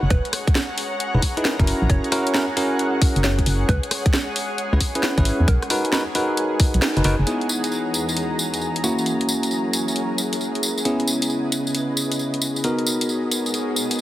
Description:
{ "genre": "UK garage, two-step garage", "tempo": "134 BPM", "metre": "4/4", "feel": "swing 65% on 16ths", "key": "unclear", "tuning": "A4 = 440 Hz", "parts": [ { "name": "organ-like FM bass", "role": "bass", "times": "0.0-7.2 s", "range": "E1 to E2", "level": "-19 LUFS", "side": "equal", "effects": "sidechain pumping" }, { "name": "granular cloud pad", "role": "texture", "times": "0.0-14.0 s", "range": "E3 to B5", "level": "-29 LUFS", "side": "equal", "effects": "built-in reverb, sidechain pumping" }, { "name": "mallet-like synth pluck", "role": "melody", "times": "0.1-7.0 s", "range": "D#4 to C#5", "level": "-34 LUFS", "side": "equal", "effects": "none" }, { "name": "electronic kick drum", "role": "drums", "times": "0.1-6.7 s", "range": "none", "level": "-19 LUFS", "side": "equal", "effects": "small room reverb" }, { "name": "garage drum kit", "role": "drums", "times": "0.1-14.0 s", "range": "hi-hat, rim click, snare drum, tambourine", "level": "-24 LUFS", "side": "equal", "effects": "small room reverb" }, { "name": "bell-like tine electric piano", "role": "stabs", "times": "1.1-14.0 s", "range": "A#3 to B4", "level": "-23 LUFS", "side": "equal", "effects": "vintage 12-bit sampler grit, low-pass filter, tape echo" }, { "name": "soft string machine", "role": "sustained chords", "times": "7.5-14.0 s", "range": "C#3 to D#5", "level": "-31 LUFS", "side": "equal", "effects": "ensemble chorus, sidechain pumping" } ], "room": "moderate lush hall reverb, RT60 1.9 s", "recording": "heavily compressed radio sound", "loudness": "-19 LUFS", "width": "side -14 dB against mid", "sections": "0.0-7.3 A section; 7.3-14.0 B section", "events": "kick drops out 6.8-7.3; band accent 6.8", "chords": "0.1 Emaj7; 1.7 F#7; 3.7 C#m7; 5.5 Bmaj7; 7.3 Emaj7; 8.8 F#7; 10.9 C#m7; 12.6 Bmaj7" }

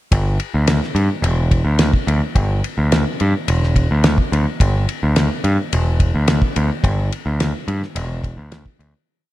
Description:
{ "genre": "psychedelic rock", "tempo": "107 BPM", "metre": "4/4", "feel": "straight", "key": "unclear", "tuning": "A4 = 442 Hz", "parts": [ { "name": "growling picked electric bass", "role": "bass", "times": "0.1-8.9 s", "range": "E1 to G2", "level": "-17 LUFS", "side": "equal", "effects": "overdrive" }, { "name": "cloth-damped thuddy drum kit", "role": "drums", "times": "0.1-8.9 s", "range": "kick drum, ride cymbal, snare drum", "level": "-20 LUFS", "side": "equal", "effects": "none" } ], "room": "light reverb", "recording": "none", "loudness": "-15 LUFS", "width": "side -15 dB against mid", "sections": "0.1-9.1 riff", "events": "fade-out 6.8-9.1", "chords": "none" }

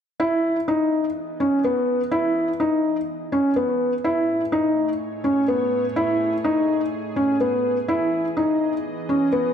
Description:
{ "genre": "electronica", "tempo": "125 BPM", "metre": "4/4", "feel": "straight", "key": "E major", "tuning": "A4 = 440 Hz", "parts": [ { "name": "lush unison pad", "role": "sustained chords", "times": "0.2-9.5 s", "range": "A2 to D#5", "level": "-36 LUFS", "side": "right 2 dB", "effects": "chorus" }, { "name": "felt-muted upright piano", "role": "riff", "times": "0.2-9.5 s", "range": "B3 to E4", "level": "-20 LUFS", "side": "equal", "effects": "digital delay" } ], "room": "wet scoring stage reverb, RT60 2.1 s", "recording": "none", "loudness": "-20 LUFS", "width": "side -8 dB against mid", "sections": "0.2-9.5 A section", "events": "fade-in on analog synth pad 0.2-9.5", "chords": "0.2 Emaj7; 4.0 Amaj7; 7.9 Emaj7" }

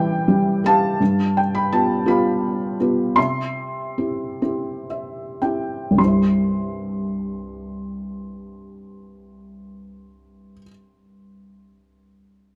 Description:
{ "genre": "classical, lyrical solo piano", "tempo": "33-57 BPM (dotted quarters)", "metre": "6/8", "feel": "rubato", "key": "C major", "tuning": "A4 = 442 Hz", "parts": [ { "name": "felt-muted upright piano", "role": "solo", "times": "0.0-12.6 s", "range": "C2 to C6", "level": "-21 LUFS", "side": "equal", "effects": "none" } ], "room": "light reverb", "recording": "none", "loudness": "-21 LUFS", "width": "mono", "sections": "0.0-1.0 A section; 1.0-6.0 B section; 6.0-12.6 C section", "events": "slowing down 1.0-6.0; felt piano fill 4.4-6.0", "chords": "0.0 C; 1.0 G7; 3.2 C" }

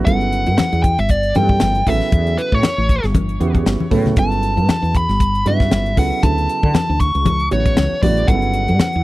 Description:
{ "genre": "electric jazz fusion", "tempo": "117 BPM", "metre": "4/4", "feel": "swing 56% on 16ths", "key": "G lydian", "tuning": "A4 = 443 Hz", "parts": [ { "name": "warm concert grand piano", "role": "accompaniment", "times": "0.0-9.0 s", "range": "C#3 to A4", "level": "-23 LUFS", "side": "right 6 dB", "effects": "none" }, { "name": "woody fretless electric bass", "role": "bass", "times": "0.0-9.0 s", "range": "G1 to D3", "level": "-18 LUFS", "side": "equal", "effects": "analog chorus" }, { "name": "dark smooth lead guitar", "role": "melody", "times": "0.1-9.0 s", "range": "B4 to C#6", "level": "-20 LUFS", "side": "equal", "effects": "overdrive" }, { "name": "crisp fusion drum kit", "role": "drums", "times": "0.1-9.0 s", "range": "hi-hat, kick drum, snare drum", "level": "-18 LUFS", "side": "equal", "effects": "none" }, { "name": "congas", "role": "percussion", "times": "0.1-8.9 s", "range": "none", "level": "-22 LUFS", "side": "left 4 dB", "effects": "none" } ], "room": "small room ambience", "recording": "dry, close 1970s-style studio recording", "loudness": "-14 LUFS", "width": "side -17 dB against mid", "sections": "0.0-9.0 A section", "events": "drum fill 3.5-4.2", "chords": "0.1 Gmaj9#11; 6.2 Dmaj13; 8.3 Gmaj9#11" }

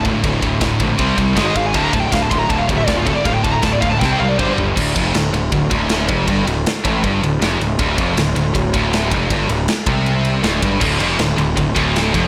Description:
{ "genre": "heavy metal", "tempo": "159 BPM", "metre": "4/4", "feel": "straight", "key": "D minor", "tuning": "A4 = 439 Hz", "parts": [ { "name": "scooped high-gain guitar", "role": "riff", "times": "0.0-12.3 s", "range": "D2 to C4", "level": "-23 LUFS", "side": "equal", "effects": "distortion" }, { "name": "scooped high-gain guitar", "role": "riff", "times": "0.0-4.8, 10.8-12.3 s", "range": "D2 to C4", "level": "-24 LUFS", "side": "equal", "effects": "distortion" }, { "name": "thick fuzz guitar", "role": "riff", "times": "0.0-12.3 s", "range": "D2 to C4", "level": "-26 LUFS", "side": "equal", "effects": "distortion" }, { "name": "fuzz picked electric bass", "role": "bass", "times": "0.0-12.3 s", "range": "D1 to C2", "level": "-22 LUFS", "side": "equal", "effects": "overdrive" }, { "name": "tight metal drum kit", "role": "drums", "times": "0.0-12.2 s", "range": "crash cymbal, kick drum, ride cymbal, snare drum, toms", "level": "-24 LUFS", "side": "equal", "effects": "none" }, { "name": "high-gain lead guitar", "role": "melody", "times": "1.5-4.5 s", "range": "F4 to C6", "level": "-23 LUFS", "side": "equal", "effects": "distortion, tape echo" } ], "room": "studio ambience", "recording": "blown-out, overdriven recording, overdrive", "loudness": "-17 LUFS", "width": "mono", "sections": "0.0-4.8 A section; 4.8-12.3 B section", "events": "lead electric guitar solo 0.0-4.8; drum fill 4.0-4.8", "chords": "0.0 D5; 1.0 C5; 1.4 G#5; 1.7 D5; 4.0 C5; 4.4 G5; 4.8 Dm" }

